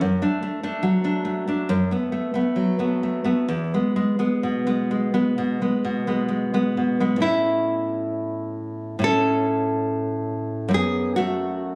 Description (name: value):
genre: romantic piece for solo classical guitar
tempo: 60-74 BPM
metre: 4/4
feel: rubato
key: A major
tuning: A4 = 440 Hz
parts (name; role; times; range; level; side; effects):
- nylon-string guitar; solo; 0.0-11.8 s; E2 to A4; -23 LUFS; equal; none
room: moderate recital hall reverb, RT60 1.4 s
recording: recorded on a phone in the room, studio ambience, compression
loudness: -23 LUFS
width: mono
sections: 0.0-7.2 A section; 7.2-11.8 B section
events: none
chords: 0.0 D/F#; 1.7 B5/F#; 3.5 E (rootless); 7.2 A; 10.7 F#m